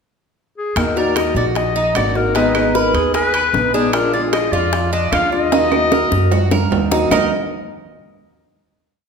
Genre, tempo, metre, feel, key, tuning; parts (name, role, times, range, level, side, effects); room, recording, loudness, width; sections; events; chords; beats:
latin, Cuban son and guajira; 151 BPM; 4/4; straight; Eb harmonic minor; A4 = 440 Hz
bright clarinet; melody; 0.6-6.7 s; Ab4 to F5; -19 LUFS; left 3 dB
picked acoustic archtop guitar; accompaniment; 0.8-7.3 s; Eb3 to Ab4; -21 LUFS; left 3 dB
upright bass; bass; 0.8-7.3 s; Ab1 to Gb2; -22 LUFS; equal
bongos; percussion; 0.8-7.2 s; -25 LUFS; left 4 dB
claves; percussion; 0.8-7.2 s; -32 LUFS; right 4 dB
timbales; percussion; 0.8-7.2 s; -23 LUFS; right 6 dB
Cuban tres; arpeggios; 1.0-7.3 s; D4 to Eb5; -21 LUFS; right 4 dB
wet recital hall reverb, RT60 1.5 s; recorded in a church or concert hall; -14 LUFS; side -5 dB against mid
0.0-0.8 pickup bar; 0.8-7.1 A section; 7.1-8.7 final chord
drum fill 5.5-7.1
0.0 N.C.; 0.8 Ebm; 2.4 Abm; 3.9 Bb7; 5.5 Ebm; 7.1 Eb5
0.38 | 0.77 1.17 1.56 1.96 | 2.35 2.75 3.14 3.54 | 3.93 4.33 4.73 5.12 | 5.52 5.92 6.32 6.72 | 7.12